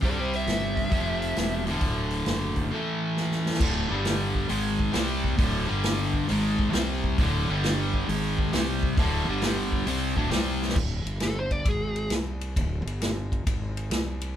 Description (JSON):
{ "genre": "blues rock power trio and southern rock", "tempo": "134 BPM", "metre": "4/4", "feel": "swing 67% on 8ths", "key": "unclear", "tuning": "A4 = 440 Hz", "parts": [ { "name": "fuzz lead guitar", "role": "melody", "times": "0.0-1.6, 11.2-12.1 s", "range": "G4 to E5", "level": "-30 LUFS", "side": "right 1 dB", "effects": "distortion" }, { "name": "distorted electric guitar", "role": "riff", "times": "0.0-10.8 s", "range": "D2 to C4", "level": "-27 LUFS", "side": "left 1 dB", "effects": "distortion" }, { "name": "fuzz fingered electric bass", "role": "bass", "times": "0.0-14.3 s", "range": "D1 to C2", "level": "-30 LUFS", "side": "equal", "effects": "overdrive" }, { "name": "vintage drum kit", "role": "drums", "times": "0.0-14.3 s", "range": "crash cymbal, hi-hat, kick drum, ride cymbal, snare drum", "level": "-28 LUFS", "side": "equal", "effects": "none" } ], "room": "moderate studio reverb, RT60 0.6 s", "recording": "band playing live in one room", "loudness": "-24 LUFS", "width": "side -10 dB against mid", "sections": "0.0-3.6 A section; 3.6-10.8 B section; 10.8-14.4 C section", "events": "drum fill 3.2-3.6, 10.5; lead electric guitar solo 10.8-14.4", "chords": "0.0 C; 0.9 F5; 1.6 D; 2.7 A5; 3.6 D5; 3.8 G5; 4.5 G#5; 4.9 C5; 5.4 D5; 5.6 G5; 6.3 G#5; 6.7 C5; 7.2 D5; 7.4 G5; 8.1 G#5; 8.5 C5; 9.0 D5; 9.2 G5; 9.9 D5; 10.3 C5; 10.8 N.C.; 11.0 Gsus2; 11.7 N.C." }